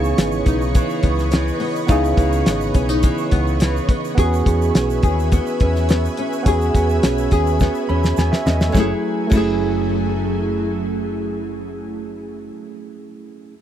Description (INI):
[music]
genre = indie pop, bedroom pop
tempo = 105 BPM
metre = 4/4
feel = straight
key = F# dorian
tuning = A4 = 439 Hz
[part]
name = barky tine electric piano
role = accompaniment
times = 0.0-13.5 s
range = A3 to B5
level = -24 LUFS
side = right 6 dB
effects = overdrive, cassette tape
[part]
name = nylon-string guitar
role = accompaniment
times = 0.0-12.9 s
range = C#3 to G#4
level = -22 LUFS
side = left 3 dB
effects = wide subtle chorus, vibrato effect
[part]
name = ethereal airy pad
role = sustained chords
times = 0.0-11.8 s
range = F#3 to C#6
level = -27 LUFS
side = right 1 dB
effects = ensemble chorus, built-in reverb
[part]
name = hollow-body short-scale fingered electric bass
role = bass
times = 0.0-12.5 s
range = F#1 to E2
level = -22 LUFS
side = equal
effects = none
[part]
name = egg shaker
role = percussion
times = 0.0-9.5 s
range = none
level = -41 LUFS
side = right 22 dB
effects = none
[part]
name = cloth-damped thuddy drum kit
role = drums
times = 0.2-9.5 s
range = crash cymbal, hi-hat, kick drum, snare drum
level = -17 LUFS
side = equal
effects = none
[sound]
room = little or no reverb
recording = dry, close 1970s-style studio recording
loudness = -16 LUFS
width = side -10 dB against mid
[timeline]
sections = 0.0-8.7 A section; 8.7-11.0 B section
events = drum fill 7.6-8.7; tine electric piano fill 7.6-8.7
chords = 0.0 C#m9; 4.2 E6; 8.7 F#m9